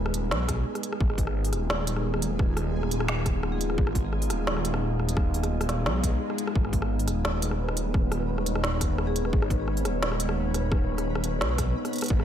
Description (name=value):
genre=half-time drum and bass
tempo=173 BPM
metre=4/4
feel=half-time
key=G# dorian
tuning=A4 = 436 Hz
part: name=deep dark ambient pad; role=sustained chords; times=0.0-12.2 s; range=G#3 to E#5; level=-31 LUFS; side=equal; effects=chorus, built-in reverb, sidechain pumping
part: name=phased detuned saw bass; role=bass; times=0.0-12.2 s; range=D#1 to B1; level=-28 LUFS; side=equal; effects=phaser
part: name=flickering grainy texture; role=texture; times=0.0-12.2 s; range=G#4 to B4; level=-38 LUFS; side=equal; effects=built-in reverb, analog chorus
part: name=organic electronic drum kit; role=drums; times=0.1-12.2 s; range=hi-hat, rim click, snare drum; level=-32 LUFS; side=equal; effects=none
part: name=electronic kick drum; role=drums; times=0.5-12.2 s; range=none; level=-26 LUFS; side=equal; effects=none
part: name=vibraphone with medium hard mallets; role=melody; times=3.5-3.8, 9.1-9.3 s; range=G#4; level=-38 LUFS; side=left 7 dB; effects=ping-pong delay
part: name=swell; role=sound effects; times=6.0-6.6 s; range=none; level=-38 LUFS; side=left 3 dB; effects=none
room=moderate lush hall reverb, RT60 1.7 s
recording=dreamy mix soaked in reverb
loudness=-24 LUFS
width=side -10 dB against mid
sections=0.0-12.2 A section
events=swell 6.0-6.6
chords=0.0 G#m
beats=0.31 0.66 | 1.01 1.35 1.70 2.05 | 2.39 2.74 3.09 3.43 | 3.78 4.13 4.47 4.82 | 5.17 5.51 5.86 6.21 | 6.55 6.90 7.25 7.60 | 7.94 8.29 8.64 8.98 | 9.33 9.68 10.02 10.37 | 10.72 11.06 11.41 11.76 | 12.11